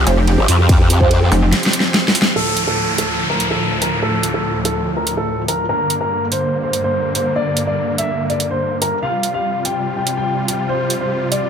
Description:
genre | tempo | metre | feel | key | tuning
heavy wobble dubstep | 144 BPM | 4/4 | half-time | D minor | A4 = 440 Hz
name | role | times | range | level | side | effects
supersaw chords | sustained chords | 0.0-11.5 s | D2 to G4 | -21 LUFS | equal | sidechain pumping, low-pass filter
growl bass | bass | 0.0-1.3 s | G1 to F2 | -13 LUFS | equal | chorus, overdrive
dark brass ensemble | stabs | 0.1-1.1 s | F4 to C5 | -22 LUFS | right 5 dB | ping-pong delay
pulsing pluck wobble bass | bass | 0.1-1.5 s | F1 | -13 LUFS | equal | chorus, overdrive
big-room dance drum kit | drums | 0.1-11.4 s | hi-hat, ride cymbal, snare drum | -18 LUFS | right 1 dB | none
electronic kick drum | drums | 0.7-1.1 s | none | -14 LUFS | equal | none
dark baby grand piano | melody | 2.4-11.5 s | A4 to G5 | -20 LUFS | left 1 dB | ping-pong delay
downlifter | sound effects | 2.4-5.7 s | none | -22 LUFS | left 1 dB | none
room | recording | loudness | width
moderate digital room reverb, RT60 1.1 s, digital ambience | none | -15 LUFS | side -7 dB against mid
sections
0.0-2.4 A section; 2.4-11.5 B section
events
drop 0.0-2.4; break 1.5-2.4; drum fill 1.5-2.4; band accent 2.2; filter sweep on supersaw synth 2.4-11.5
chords
0.0 Fsus2; 2.4 Dm; 5.7 Gm; 9.0 Csus4

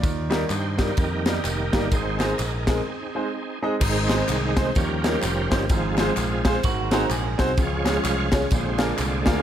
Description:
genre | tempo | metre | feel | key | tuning
uptempo gospel | 127 BPM | 4/4 | swing 60% on 8ths | Ab major | A4 = 441 Hz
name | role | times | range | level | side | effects
clear grand piano | accompaniment | 0.0-9.4 s | Ab2 to Eb5 | -26 LUFS | equal | none
picked electric bass | bass | 0.0-9.4 s | F1 to G2 | -27 LUFS | equal | none
crisp fusion drum kit | drums | 0.0-9.4 s | crash cymbal, kick drum, ride cymbal, snare drum | -25 LUFS | left 1 dB | none
tambourine and handclaps | percussion | 0.0-9.4 s | none | -36 LUFS | left 2 dB | none
bright tonewheel organ | sustained chords | 0.5-9.4 s | D3 to F5 | -27 LUFS | right 2 dB | fast rotary speaker, overdrive, chorus vibrato
clean electric guitar | second line | 6.6-7.6 s | Gb4 to Bb4 | -30 LUFS | right 7 dB | spring reverb
room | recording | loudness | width
light reverb | none | -20 LUFS | side -10 dB against mid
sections
0.0-3.8 A section; 3.8-9.4 A section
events
tonewheel organ solo 0.0-3.8, 3.8-9.4; break 2.9-3.8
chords
0.0 Eb; 1.9 Ab; 4.8 Eb7; 5.7 Fm/Ab; 6.6 Ab7; 7.6 Db; 8.5 Bb7

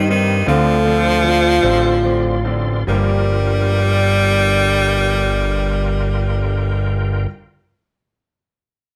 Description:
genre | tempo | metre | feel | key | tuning
six-eight pop ballad | 46-54 BPM (dotted quarters) | 6/8 | straight | G minor | A4 = 439 Hz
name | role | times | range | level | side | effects
edgy tenor saxophone | melody | 0.0-7.3 s | Eb3 to G3 | -20 LUFS | equal | none
dark French horn section | second line | 0.0-7.3 s | D4 to A4 | -25 LUFS | equal | none
bright tonewheel organ | sustained chords | 0.0-7.3 s | F4 to C6 | -31 LUFS | equal | chorus vibrato, fast rotary speaker
fat analog bass | bass | 0.0-7.3 s | G1 to G2 | -20 LUFS | equal | none
clear concert grand piano | accompaniment | 0.1-7.3 s | D3 to C4 | -26 LUFS | equal | none
room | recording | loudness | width
moderate studio reverb, RT60 0.7 s | band playing live in one room | -16 LUFS | mono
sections
0.0-2.9 A section; 2.9-8.0 B section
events
slowing down 0.0-2.9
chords
0.5 Dm7; 2.9 Gm7

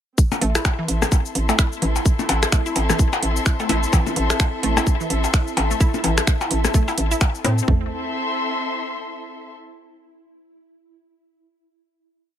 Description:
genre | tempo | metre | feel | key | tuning
minimal techno | 128 BPM | 4/4 | swing 59% on 16ths | A minor | A4 = 440 Hz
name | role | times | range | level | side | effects
booming analog drum machine | drums | 0.2-7.7 s | cabasa, finger snaps, hi-hat | -25 LUFS | equal | overdrive
garage drum kit | drums | 0.2-7.8 s | kick drum, toms | -18 LUFS | equal | none
muted studio string section | texture | 0.2-9.5 s | C4 to C6 | -27 LUFS | left 3 dB | sidechain pumping
swarming drone | texture | 0.8-7.7 s | E4 | -33 LUFS | right 3 dB | built-in reverb, sidechain pumping
electronic percussion blips and rim click | percussion | 0.3-7.6 s | none | -24 LUFS | left 4 dB | none
resonant blip pluck | riff | 0.4-7.9 s | E3 to E4 | -27 LUFS | equal | chorus, sidechain pumping, ping-pong delay
hollow knocking FM bass | bass | 0.4-7.9 s | A1 to A2 | -22 LUFS | equal | sidechain pumping
room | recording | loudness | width
light reverb, digital ambience | none | -18 LUFS | side -10 dB against mid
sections
0.2-7.7 drop; 7.7-9.6 final chord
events
drop 0.2-7.7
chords
0.2 Am

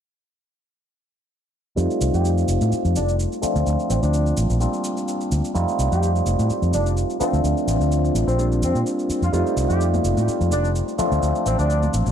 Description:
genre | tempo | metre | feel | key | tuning
filtered disco house | 127 BPM | 4/4 | swing 54% on 16ths | F mixolydian | A4 = 441 Hz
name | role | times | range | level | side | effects
overdriven tine electric piano | accompaniment | 1.8-12.1 s | F3 to F4 | -23 LUFS | equal | phaser, low-pass filter, tape echo
vintage muted fingered electric bass | bass | 1.8-12.1 s | F1 to Bb2 | -20 LUFS | equal | low-pass filter
shaker | drums | 1.8-12.1 s | none | -35 LUFS | right 2 dB | tape echo
brilliant horn section | melody | 2.1-11.9 s | C4 to G4 | -29 LUFS | left 1 dB | vintage 12-bit sampler grit, low-pass filter, tape echo
maracas and congas | percussion | 9.3-12.1 s | none | -32 LUFS | left 4 dB | none
room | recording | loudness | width
light reverb, small room ambience | echo-heavy mix | -18 LUFS | side -8 dB against mid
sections
1.8-12.1 A section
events
filter sweep 1.8-12.1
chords
1.8 F7; 3.4 Dm7; 4.6 Bb69; 5.6 F7; 7.2 Dm7; 8.4 Bb69; 9.3 F7; 11.0 Dm7

